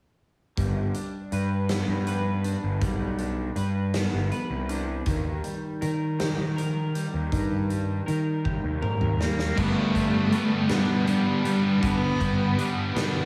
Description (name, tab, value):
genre	quiet-loud alternative rock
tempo	53 BPM (dotted quarters)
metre	6/8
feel	straight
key	unclear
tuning	A4 = 439 Hz
part	clean electric guitar	arpeggios	0.6-13.3 s	G2 to B4	-33 LUFS	equal	analog chorus, slapback echo
part	fuzz picked electric bass	bass	0.6-13.3 s	G1 to G3	-30 LUFS	equal	overdrive
part	huge arena drum kit	drums	0.6-13.1 s	crash cymbal, hi-hat, kick drum, snare drum, toms	-33 LUFS	equal	none
part	clear cello	melody	9.2-12.7 s	G3 to B3	-28 LUFS	equal	none
part	distorted electric guitar	riff	9.6-13.3 s	G2 to D4	-31 LUFS	equal	distortion
room	moderate lush hall reverb, RT60 2.2 s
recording	big arena sound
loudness	-26 LUFS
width	mono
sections	0.6-9.6 A section; 9.6-13.3 B section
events	drum fill 8.4-9.6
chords	0.6 G; 5.1 Eb; 9.6 G